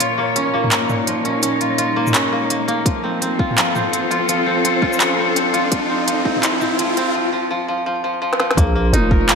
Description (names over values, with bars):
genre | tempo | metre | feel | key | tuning
half-time drum and bass | 168 BPM | 4/4 | swing 59% on 16ths, half-time | Bb harmonic minor | A4 = 440 Hz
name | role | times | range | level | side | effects
rich studio cello section | sustained chords | 0.0-9.3 s | Bb2 to Db5 | -21 LUFS | left 2 dB | sidechain pumping
koto | arpeggios | 0.0-9.3 s | Bb2 to Bb4 | -20 LUFS | equal | low-pass filter, ping-pong delay
organic electronic drum kit | drums | 0.0-9.3 s | handclaps, hi-hat, shaker, snare drum, toms | -19 LUFS | equal | none
riser and sub drop | sound effects | 0.4-9.3 s | none | -24 LUFS | equal | none
electronic kick drum | drums | 2.9-6.3, 8.6-9.2 s | none | -18 LUFS | equal | none
growling 808-style bass | bass | 8.6-9.3 s | F1 to Bb1 | -17 LUFS | equal | none
metallic inharmonic drone | texture | 8.8-9.3 s | F3 to F4 | -24 LUFS | right 2 dB | chorus, built-in reverb, phaser
room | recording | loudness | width
moderate lush hall reverb, RT60 1.9 s | high-pass filter | -15 LUFS | side -5 dB against mid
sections
0.0-8.6 A section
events
build-up 0.0-8.6; riser 0.4-7.1; break 7.1-8.6; drum fill 8.3; impact 8.6-9.3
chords
0.0 Bbm; 2.9 F; 8.6 Bbm